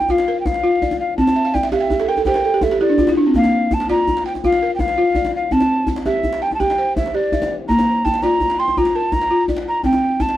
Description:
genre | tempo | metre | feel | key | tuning
west african traditional, West African string and xylophone music | 111 BPM (dotted quarters) | 12/8 | straight | C mixolydian | A4 = 441 Hz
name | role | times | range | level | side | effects
mellow hollow jazz flute | melody | 0.0-10.4 s | D5 to C6 | -19 LUFS | equal | none
balafon | arpeggios | 0.0-10.4 s | Bb3 to A5 | -18 LUFS | equal | none
djembe | percussion | 0.0-10.4 s | none | -24 LUFS | left 1 dB | none
room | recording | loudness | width
little or no reverb | dry, close 1970s-style studio recording | -15 LUFS | side -13 dB against mid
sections
0.0-10.4 A section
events
balafon fill 1.4-3.4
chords
0.0 Bb; 1.2 C; 3.4 Bb; 5.5 C; 7.7 Bb; 9.8 C5

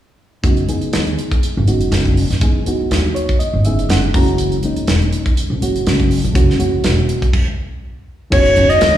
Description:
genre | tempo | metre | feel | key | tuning
electric jazz fusion | 122 BPM | 4/4 | swing 55% on 16ths | unclear | A4 = 440 Hz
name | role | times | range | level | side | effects
reed electric piano | accompaniment | 0.4-8.8 s | E3 to A#5 | -20 LUFS | equal | plate reverb, slapback echo
upright bass | bass | 0.4-9.0 s | E1 to D#2 | -16 LUFS | equal | none
modern studio drum kit | drums | 0.4-8.9 s | crash cymbal, hi-hat, kick drum, snare drum | -18 LUFS | equal | none
growling soprano saxophone | melody | 8.3-9.0 s | C#5 to D#5 | -11 LUFS | left 1 dB | plate reverb, slapback echo
room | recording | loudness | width
light reverb | live gig heard through the venue's PA, recital hall reverb, small room ambience | -13 LUFS | side -12 dB against mid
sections
0.4-8.3 A section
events
reed electric piano fill 2.9-4.4; stop 7.3-8.3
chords
0.4 Emaj9/F#; 4.1 F#9; 8.3 Emaj9/F#

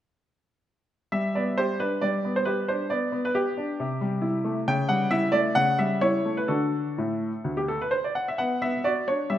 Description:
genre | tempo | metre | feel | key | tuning
classical-period piano sonatina | 126-138 BPM | 4/4 | rubato | G major | A4 = 441 Hz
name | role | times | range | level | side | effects
bright baby grand piano | solo | 1.1-9.4 s | D2 to G5 | -23 LUFS | equal | none
room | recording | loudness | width
moderate recital hall reverb, RT60 1.4 s | none | -23 LUFS | side -11 dB against mid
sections
1.1-9.4 A section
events
none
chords
1.1 G; 2.9 G/B; 3.8 Am7/C; 4.7 A7/C#; 6.5 D; 8.4 Bm

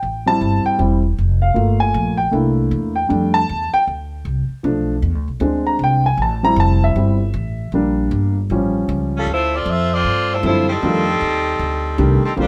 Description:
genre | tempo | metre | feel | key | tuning
jazz, big band swing | 156 BPM | 4/4 | swing 64% on 8ths | D minor | A4 = 440 Hz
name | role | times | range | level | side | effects
warm grand piano | accompaniment | 0.0-12.5 s | D3 to Bb5 | -20 LUFS | equal | none
upright bass | bass | 0.0-12.5 s | E1 to G2 | -22 LUFS | equal | none
mellow saxophone section | melody | 9.2-12.5 s | G3 to E5 | -21 LUFS | equal | none
room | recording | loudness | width
light reverb | none | -18 LUFS | mono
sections
0.0-9.3 A section; 9.3-12.5 B section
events
grand piano solo 0.0-9.3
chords
0.0 Am7; 1.6 Gm7; 2.3 C13; 3.1 F69; 4.6 Bm7b5; 5.4 Bb13; 6.2 Am7; 7.7 Gm; 8.5 Aaug7; 9.3 Dm11; 10.8 F13

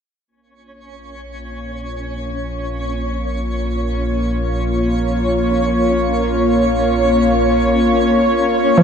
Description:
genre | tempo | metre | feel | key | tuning
ambient, sequencer-driven space music | free time | none | none | unclear | A4 = 440 Hz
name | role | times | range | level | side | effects
lush unison pad | sustained chords | 1.6-8.8 s | A#3 to C#5 | -17 LUFS | left 1 dB | chorus, shimmer reverb
analog drone | bass | 1.2-8.8 s | A#1 | -24 LUFS | equal | chorus, phaser, tube saturation
twinkling granular texture | texture | 0.9-8.8 s | C#4 to C#5 | -22 LUFS | equal | built-in reverb, shimmer reverb
resonant blip pluck | riff | 8.8 s | E#3 | -7 LUFS | right 1 dB | chorus
room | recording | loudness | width
wet plate reverb, RT60 2.5 s | none | -15 LUFS | side -7 dB against mid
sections
0.3-8.8 A section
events
fade-in on analog synth pad 0.3-8.8; fade-in on synth drone 0.3-8.8; fade-in on synth texture 0.3-8.8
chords
0.3 A#m

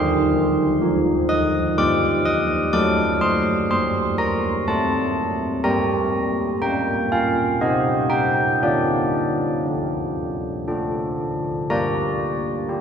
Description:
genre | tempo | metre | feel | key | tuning
classical, tune for church bells | 60 BPM | 3/4 | uneven beats | G minor | A4 = 440 Hz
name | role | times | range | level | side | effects
carillon bells | solo | 0.0-12.8 s | D3 to Eb6 | -18 LUFS | equal | none
room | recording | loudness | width
wet church reverb, RT60 3.5 s | heard from further back in the room | -18 LUFS | side -7 dB against mid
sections
0.0-11.7 A section; 11.7-12.8 B section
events
none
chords
0.0 Cm/Eb; 2.8 F#dim; 5.7 Gm; 7.6 Cm; 8.6 Bb/D; 10.7 D5; 11.7 Gm

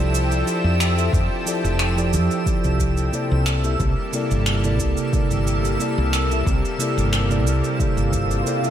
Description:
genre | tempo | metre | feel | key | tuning
sunset chillout | 90 BPM | 4/4 | straight | F major | A4 = 439 Hz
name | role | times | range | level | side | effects
mellow tine electric piano | accompaniment | 0.0-8.7 s | C3 to E5 | -24 LUFS | moving between left 4 dB and right 4 dB | auto-pan, ping-pong delay, slapback echo
lush unison pad | sustained chords | 0.0-8.7 s | C3 to A4 | -26 LUFS | left 1 dB | chorus
woody fretless electric bass | bass | 0.0-8.4 s | F1 to F2 | -21 LUFS | equal | none
twinkling granular texture | texture | 0.0-8.7 s | E6 | -31 LUFS | right 3 dB | built-in reverb
electronic shaker and finger snaps | drums | 0.1-8.7 s | none | -28 LUFS | right 2 dB | overdrive
electronic kick drum | drums | 1.1-8.3 s | none | -23 LUFS | equal | overdrive
swell | sound effects | 8.0-8.7 s | none | -27 LUFS | right 2 dB | none
room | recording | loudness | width
moderate lush hall reverb, RT60 1.8 s, digital ambience | big arena sound | -18 LUFS | side -10 dB against mid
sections
0.0-8.7 A section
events
swell 8.0-8.7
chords
0.0 Fmaj13; 3.5 C13

